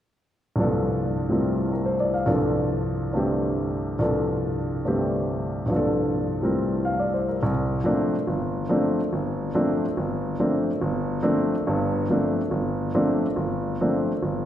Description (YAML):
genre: jazz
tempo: 141 BPM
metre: 4/4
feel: swing 68% on 8ths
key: unclear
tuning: A4 = 443 Hz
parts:
  - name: warm grand piano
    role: solo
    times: 0.6-14.5 s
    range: G1 to F5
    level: -22 LUFS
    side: equal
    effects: none
room: wet concert hall reverb, RT60 1.9 s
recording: recorded in a church or concert hall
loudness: -22 LUFS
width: side -11 dB against mid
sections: 0.6-7.4 A section; 7.4-14.5 B section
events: none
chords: 0.6 C13sus4